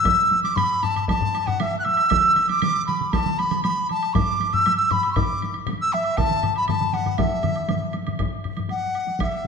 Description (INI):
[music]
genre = japanese traditional, taiko drum ensemble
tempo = 118 BPM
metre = 4/4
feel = straight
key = E suspended pentatonic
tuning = A4 = 442 Hz
[part]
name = mellow hollow dizi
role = melody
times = 0.0-9.5 s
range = E5 to F#6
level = -21 LUFS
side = equal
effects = none
[part]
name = taiko ensemble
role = percussion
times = 0.0-9.3 s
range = none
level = -28 LUFS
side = left 5 dB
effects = none
[part]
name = solo taiko drums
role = percussion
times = 0.1-9.3 s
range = none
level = -29 LUFS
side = right 1 dB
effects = none
[part]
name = taiko ensemble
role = percussion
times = 0.1-9.3 s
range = none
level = -29 LUFS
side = right 1 dB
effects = none
[part]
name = woodblock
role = percussion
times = 0.1-9.3 s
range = none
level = -35 LUFS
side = right 4 dB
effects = none
[part]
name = solo taiko drums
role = percussion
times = 2.1-8.2 s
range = none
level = -30 LUFS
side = right 4 dB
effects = none
[sound]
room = wet scoring stage reverb, RT60 2.0 s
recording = minimal, uncompressed stereo recording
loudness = -19 LUFS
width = side -5 dB against mid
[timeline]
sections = 0.0-8.2 A section; 8.2-9.5 B section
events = speeding up 0.0-9.5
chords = none